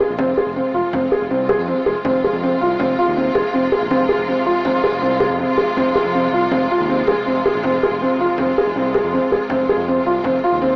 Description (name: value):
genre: contemporary instrumental, chamber music in an uneven meter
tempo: 161 BPM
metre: 5/4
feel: straight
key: F minor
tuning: A4 = 440 Hz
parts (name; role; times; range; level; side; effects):
- rich studio string section; sustained chords; 0.0-10.8 s; C3 to F4; -25 LUFS; equal; none
- felt-muted upright piano; arpeggios; 0.0-10.7 s; C4 to Ab4; -19 LUFS; equal; none
- smooth synth bass; bass; 0.1-10.7 s; F1 to F2; -30 LUFS; equal; none
- frame drum; percussion; 0.2-10.4 s; none; -32 LUFS; equal; none
room: light reverb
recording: worn, warbling old tape, cassette tape, warbly pitch drift, small speaker sound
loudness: -18 LUFS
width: mono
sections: 0.0-10.8 A section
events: none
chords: 0.0 Fm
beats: | 0.19 0.56 0.93 1.30 1.68 | 2.05 2.42 2.79 3.17 3.54 | 3.91 4.28 4.66 5.03 5.40 | 5.77 6.14 6.52 6.89 7.26 | 7.63 8.01 8.38 8.75 9.12 | 9.50 9.87 10.24 10.61